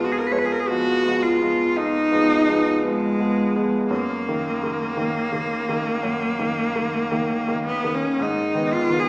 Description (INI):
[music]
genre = classical, romantic duo for cello and grand piano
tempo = 56 BPM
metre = 4/4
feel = rubato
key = Eb minor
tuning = A4 = 439 Hz
[part]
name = clear cello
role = melody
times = 0.0-9.1 s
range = Ab3 to Db5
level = -21 LUFS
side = equal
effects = none
[part]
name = clear baby grand piano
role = accompaniment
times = 0.0-9.1 s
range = F2 to Cb4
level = -23 LUFS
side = equal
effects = none
[sound]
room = wet recital hall reverb, RT60 1.6 s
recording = heard from further back in the room, small speaker sound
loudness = -19 LUFS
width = side -27 dB against mid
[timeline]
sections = 0.0-9.1 A section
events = none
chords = 0.0 Fm7b5; 3.9 Ebm/Gb; 8.2 Abm